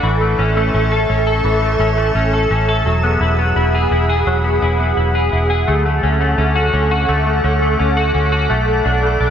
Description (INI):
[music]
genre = dream pop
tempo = 85 BPM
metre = 4/4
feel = straight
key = D lydian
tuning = A4 = 436 Hz
[part]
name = soft string machine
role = sustained chords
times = 0.0-9.3 s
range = G#4 to E6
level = -19 LUFS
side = right 1 dB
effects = ensemble chorus
[part]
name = clean electric guitar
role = arpeggios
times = 0.0-9.3 s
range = E3 to A4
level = -18 LUFS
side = left 2 dB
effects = analog chorus, dub echo
[part]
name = vintage muted fingered electric bass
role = bass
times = 0.0-9.3 s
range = E1 to D2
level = -17 LUFS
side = equal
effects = none
[sound]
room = moderate spring reverb, RT60 1.2 s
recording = echo-heavy mix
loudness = -13 LUFS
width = side -8 dB against mid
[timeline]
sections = 0.0-9.3 A section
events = none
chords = 0.0 A; 2.9 Eadd9; 5.7 Dmaj7; 8.5 Bm7